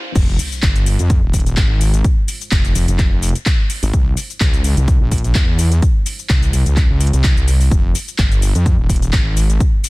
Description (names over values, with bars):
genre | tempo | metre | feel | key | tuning
bass house | 127 BPM | 4/4 | swing 54% on 16ths | F minor | A4 = 441 Hz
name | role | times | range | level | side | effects
dark analog pad | sustained chords | 0.0-9.9 s | G3 to C5 | -45 LUFS | left 1 dB | none
swell and sub drop | sound effects | 0.0-2.0 s | none | -28 LUFS | equal | none
wobble bass | bass | 0.2-9.6 s | Eb1 to F2 | -15 LUFS | equal | chorus, tube saturation, sidechain pumping
electronic kick drum | drums | 0.2-9.7 s | none | -15 LUFS | equal | studio reverb
house drum kit | drums | 0.2-9.9 s | crash cymbal, handclaps, hi-hat, shaker | -23 LUFS | left 1 dB | studio reverb
room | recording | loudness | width
digital ambience | dense, heavily limited modern master, high-pass filter | -13 LUFS | side -22 dB against mid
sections
0.2-9.9 A section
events
break 0.0; swell 0.0; drop 0.2-9.9; impact 0.2-2.0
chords
0.2 Fm; 3.9 C; 7.7 Fm